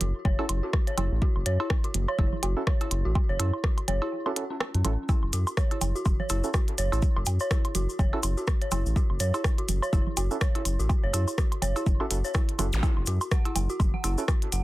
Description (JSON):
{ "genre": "minimal techno", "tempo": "124 BPM", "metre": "4/4", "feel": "swing 58% on 16ths", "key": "F# minor", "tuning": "A4 = 440 Hz", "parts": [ { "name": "dark detuned synth bell", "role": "riff", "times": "0.0-14.6 s", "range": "C#4 to F#5", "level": "-33 LUFS", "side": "equal", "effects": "chorus, sidechain pumping, digital delay" }, { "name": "round analog bass", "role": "bass", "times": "0.0-14.6 s", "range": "F#1 to F#2", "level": "-27 LUFS", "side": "equal", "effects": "sidechain pumping" }, { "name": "minimal click drum kit", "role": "drums", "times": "0.0-14.6 s", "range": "hi-hat, rim click", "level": "-31 LUFS", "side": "right 1 dB", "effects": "overdrive" }, { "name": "congas, woodblock and cowbell", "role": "percussion", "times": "0.0-14.4 s", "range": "none", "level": "-35 LUFS", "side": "right 3 dB", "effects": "tape echo" }, { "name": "electronic kick drum", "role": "drums", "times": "0.2-14.4 s", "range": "none", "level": "-25 LUFS", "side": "equal", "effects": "overdrive" }, { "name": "percussive organ stab", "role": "stabs", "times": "0.4-14.2 s", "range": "C#4 to A4", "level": "-35 LUFS", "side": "right 4 dB", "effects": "chorus, tape echo" }, { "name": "cabasa", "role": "percussion", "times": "5.1-14.6 s", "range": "none", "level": "-38 LUFS", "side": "left 4 dB", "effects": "none" }, { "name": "zap", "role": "sound effects", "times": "12.7-12.8 s", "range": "none", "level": "-36 LUFS", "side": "equal", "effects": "none" } ], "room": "little or no reverb", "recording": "dense, heavily limited modern master", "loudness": "-24 LUFS", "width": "side -17 dB against mid", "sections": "0.0-14.6 A section", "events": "break 4.1-5.1", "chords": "0.0 F#m7", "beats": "0.25 0.73 | 1.22 1.70 2.19 2.67 | 3.15 3.64 4.12 4.61 | 5.09 5.57 6.06 6.54 | 7.02 7.51 7.99 8.48 | 8.96 9.44 9.93 10.41 | 10.89 11.38 11.86 12.35 | 12.83 13.31 13.80 14.28" }